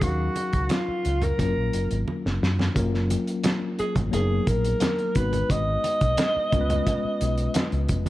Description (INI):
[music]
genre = lush 1970s-style soul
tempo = 88 BPM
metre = 4/4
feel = straight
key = unclear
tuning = A4 = 440 Hz
[part]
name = warm alto saxophone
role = melody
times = 0.0-7.9 s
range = E#4 to D#5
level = -27 LUFS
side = right 1 dB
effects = none
[part]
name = mellow tine electric piano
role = accompaniment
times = 0.0-8.1 s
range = F#3 to E#5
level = -29 LUFS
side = left 3 dB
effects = medium stereo tremolo
[part]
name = fingered electric bass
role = bass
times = 0.0-8.1 s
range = E#1 to F#2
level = -26 LUFS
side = equal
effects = none
[part]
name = cloth-damped thuddy drum kit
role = drums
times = 0.0-8.1 s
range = hi-hat, kick drum, snare drum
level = -27 LUFS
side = equal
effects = none
[part]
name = congas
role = percussion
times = 0.0-8.1 s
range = none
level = -33 LUFS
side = right 4 dB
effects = none
[sound]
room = light reverb, studio reverb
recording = dark, warm production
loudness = -22 LUFS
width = side -16 dB against mid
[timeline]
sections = 0.0-2.8 A section; 2.8-8.1 B section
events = drum fill 2.1-2.8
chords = 0.0 D#m9; 1.4 F#maj7; 4.1 Bmaj7/F#; 5.2 G#m7; 6.5 C#7